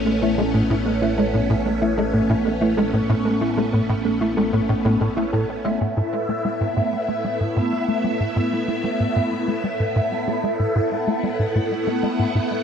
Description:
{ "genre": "ambient, sequencer-driven space music", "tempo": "94 BPM", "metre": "4/4", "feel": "straight", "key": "A major", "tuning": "A4 = 444 Hz", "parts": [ { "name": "phased string machine", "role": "sustained chords", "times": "0.0-12.6 s", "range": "A2 to F#5", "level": "-22 LUFS", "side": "equal", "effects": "ensemble chorus, phaser" }, { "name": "fat analog bass", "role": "bass", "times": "0.0-5.8 s", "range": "A1", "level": "-30 LUFS", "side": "equal", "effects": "none" }, { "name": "thumb-piano-like synth pluck", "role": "arpeggios", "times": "0.1-5.8 s", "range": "A3 to E5", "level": "-24 LUFS", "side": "right 1 dB", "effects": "chorus, auto-pan, cassette tape, tape echo" }, { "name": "tight sequencer bass", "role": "riff", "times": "0.2-12.4 s", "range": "A2 to A3", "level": "-23 LUFS", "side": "equal", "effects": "ensemble chorus, tape echo" } ], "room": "moderate plate reverb, RT60 2.3 s", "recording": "cassette tape", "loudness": "-19 LUFS", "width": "side -7 dB against mid", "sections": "0.0-5.8 A section; 5.8-12.6 A section", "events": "filter sweep on analog synth bass 5.8-12.6", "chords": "0.0 Asus2" }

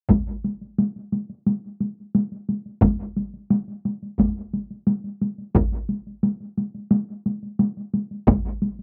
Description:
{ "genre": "japanese traditional, taiko drum ensemble", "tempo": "88 BPM", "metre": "4/4", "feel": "straight", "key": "none", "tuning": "none", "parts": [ { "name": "solo taiko drums", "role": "percussion", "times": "0.1-8.8 s", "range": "none", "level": "-24 LUFS", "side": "equal", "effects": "none" }, { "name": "taiko ensemble", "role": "percussion", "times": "0.1-8.4 s", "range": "none", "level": "-23 LUFS", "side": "equal", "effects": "none" } ], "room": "little or no reverb", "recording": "recorded outdoors, with no room sound", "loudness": "-25 LUFS", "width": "mono", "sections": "0.1-8.8 A section", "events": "none", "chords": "none" }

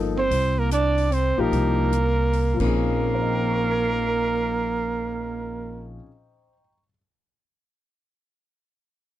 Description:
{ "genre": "modal jazz", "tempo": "149 BPM", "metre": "3/4", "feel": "swing 66% on 8ths", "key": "Bb dorian", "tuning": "A4 = 440 Hz", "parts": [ { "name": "warm concert grand piano", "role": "accompaniment", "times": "0.0-7.0 s", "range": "Bb2 to C7", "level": "-28 LUFS", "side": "left 5 dB", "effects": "none" }, { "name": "upright bass", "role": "bass", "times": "0.0-6.0 s", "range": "G1 to C2", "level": "-25 LUFS", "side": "equal", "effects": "none" }, { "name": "clear trumpet", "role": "melody", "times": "0.2-5.9 s", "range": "Bb4 to D5", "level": "-26 LUFS", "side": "equal", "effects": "none" }, { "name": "growling tenor saxophone", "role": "second line", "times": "0.2-5.9 s", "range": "Bb3 to D4", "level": "-27 LUFS", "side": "right 8 dB", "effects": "none" }, { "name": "open jazz drum kit", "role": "drums", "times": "0.3-2.7 s", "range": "crash cymbal, hi-hat, kick drum", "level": "-37 LUFS", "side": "left 2 dB", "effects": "none" } ], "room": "little or no reverb", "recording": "dry, close 1970s-style studio recording", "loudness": "-20 LUFS", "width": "side -13 dB against mid", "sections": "0.0-2.7 A section; 2.7-5.2 B section", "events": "none", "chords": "0.0 Cm11; 2.5 Bbm11" }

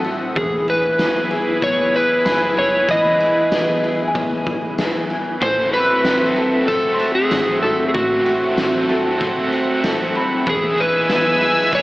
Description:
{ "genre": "dream pop", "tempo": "95 BPM", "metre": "4/4", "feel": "straight", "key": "E major", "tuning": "A4 = 440 Hz", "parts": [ { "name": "phased analog pad", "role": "sustained chords", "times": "0.0-11.8 s", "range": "C4 to E6", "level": "-22 LUFS", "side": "equal", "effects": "phaser, chorus" }, { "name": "mellow electric guitar", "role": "arpeggios", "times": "0.0-11.8 s", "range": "A2 to A4", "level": "-25 LUFS", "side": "equal", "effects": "wide subtle chorus, tape echo" }, { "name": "oversized low-tuned drum kit", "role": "drums", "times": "0.0-11.8 s", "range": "kick drum, ride cymbal, snare drum, tambourine", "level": "-24 LUFS", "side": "equal", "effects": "none" }, { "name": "small celesta", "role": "texture", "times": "0.0-10.8 s", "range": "G#5 to A6", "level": "-26 LUFS", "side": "equal", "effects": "tape echo" }, { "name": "electric slide guitar", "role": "melody", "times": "0.4-11.8 s", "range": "F#4 to D#5", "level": "-18 LUFS", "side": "equal", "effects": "tape echo" }, { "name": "slap-like FM bass", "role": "bass", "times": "0.4-11.8 s", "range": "E1 to A1", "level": "-33 LUFS", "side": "equal", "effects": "none" }, { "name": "crunchy overdriven guitar", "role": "accompaniment", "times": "5.4-11.8 s", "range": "A2 to A4", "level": "-24 LUFS", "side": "right 1 dB", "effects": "tremolo, wide subtle chorus, slapback echo" } ], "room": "wet lush hall reverb, RT60 1.7 s, studio ambience", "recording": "big arena sound, AM radio sound", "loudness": "-15 LUFS", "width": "side -18 dB against mid", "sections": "0.0-11.8 A section", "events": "none", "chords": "0.4 E; 5.4 Am6; 10.5 E" }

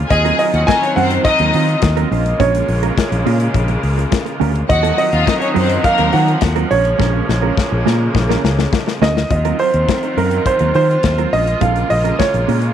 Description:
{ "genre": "disco", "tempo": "104 BPM", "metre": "4/4", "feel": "straight", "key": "Eb dorian", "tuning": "A4 = 440 Hz", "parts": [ { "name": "clear studio string section", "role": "sustained chords", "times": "0.0-12.7 s", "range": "Db3 to F4", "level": "-22 LUFS", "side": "equal", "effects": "none" }, { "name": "fingered electric bass", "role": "bass", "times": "0.0-12.7 s", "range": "Bb1 to Eb3", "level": "-17 LUFS", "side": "left 1 dB", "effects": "transformer saturation" }, { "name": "warm concert grand piano", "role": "melody", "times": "0.1-12.7 s", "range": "Bb4 to Ab5", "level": "-18 LUFS", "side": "right 2 dB", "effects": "none" }, { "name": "clear studio string section", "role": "second line", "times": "0.1-6.4 s", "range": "Bb3 to Ab5", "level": "-19 LUFS", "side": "left 4 dB", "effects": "none" }, { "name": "mellow electric guitar", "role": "accompaniment", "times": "0.1-12.7 s", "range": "Gb3 to C5", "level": "-23 LUFS", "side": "right 16 dB", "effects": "spring reverb" }, { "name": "modern studio drum kit", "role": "drums", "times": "0.1-12.7 s", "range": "hi-hat, kick drum, snare drum", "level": "-20 LUFS", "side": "left 4 dB", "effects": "none" } ], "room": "light reverb", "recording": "1960s-style stereo", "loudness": "-13 LUFS", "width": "side -9 dB against mid", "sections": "0.0-9.3 A section; 9.3-12.7 B section", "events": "drum fill 7.0-9.3", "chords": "0.1 Ebm69; 2.1 Bbm7; 4.7 Ebm69; 6.7 Bbm7; 9.3 Ebm69; 11.3 Bbm7" }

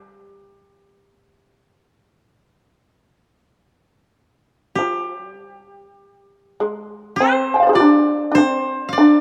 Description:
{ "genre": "japanese traditional, Japanese chamber music", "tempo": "47-52 BPM", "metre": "4/4", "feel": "rubato", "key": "G in sen", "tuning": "A4 = 445 Hz", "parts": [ { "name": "koto", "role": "melody", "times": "0.0-9.2 s", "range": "G4 to F5", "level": "-23 LUFS", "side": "equal", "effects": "none" }, { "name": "shamisen", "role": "second line", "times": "0.0-9.2 s", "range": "G3 to Ab5", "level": "-17 LUFS", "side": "equal", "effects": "none" } ], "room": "wet spring reverb, RT60 1.8 s", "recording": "heard from further back in the room", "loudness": "-18 LUFS", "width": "mono", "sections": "0.0-4.8 A section; 4.8-9.2 B section", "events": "none", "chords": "none" }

